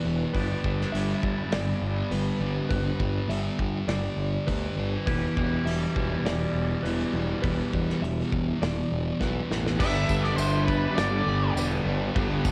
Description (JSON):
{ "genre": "rock, shoegaze and dream pop", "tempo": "102 BPM", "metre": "4/4", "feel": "straight", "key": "G major", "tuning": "A4 = 440 Hz", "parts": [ { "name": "direct-recorded clean electric guitar", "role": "arpeggios", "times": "0.0-12.5 s", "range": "B4 to E5", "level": "-39 LUFS", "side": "equal", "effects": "lush chorus, cassette tape, tape echo" }, { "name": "biting overdriven guitar", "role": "riff", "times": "0.0-12.5 s", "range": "E2 to G4", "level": "-35 LUFS", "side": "equal", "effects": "reverse reverb, cassette tape" }, { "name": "thick fuzz guitar", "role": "riff", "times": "0.0-12.5 s", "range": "E2 to G3", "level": "-32 LUFS", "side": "equal", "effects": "distortion, subtle chorus, cassette tape" }, { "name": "growling fingered electric bass", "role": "bass", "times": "0.0-12.5 s", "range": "E1 to D2", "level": "-33 LUFS", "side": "equal", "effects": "overdrive" }, { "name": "loose indie drum kit", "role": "drums", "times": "0.3-12.5 s", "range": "crash cymbal, hi-hat, kick drum, snare drum", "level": "-34 LUFS", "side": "equal", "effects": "cassette tape" }, { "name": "octave-fuzz lead guitar", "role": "melody", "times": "9.8-11.5 s", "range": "B4 to E5", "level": "-33 LUFS", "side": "equal", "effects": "distortion, cassette tape, tape echo" }, { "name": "raw garage guitar", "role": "riff", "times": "9.8-12.5 s", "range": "G2 to G3", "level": "-34 LUFS", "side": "equal", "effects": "overdrive, cassette tape" }, { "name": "tambourine", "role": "percussion", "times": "10.1-12.5 s", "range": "none", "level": "-43 LUFS", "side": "equal", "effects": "none" } ], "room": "light reverb, small room ambience", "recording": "home recording on cassette", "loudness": "-27 LUFS", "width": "mono", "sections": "0.0-9.8 A section; 9.8-12.5 A section", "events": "drum fill 9.2-9.8", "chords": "0.3 G; 5.1 Em7; 9.8 G" }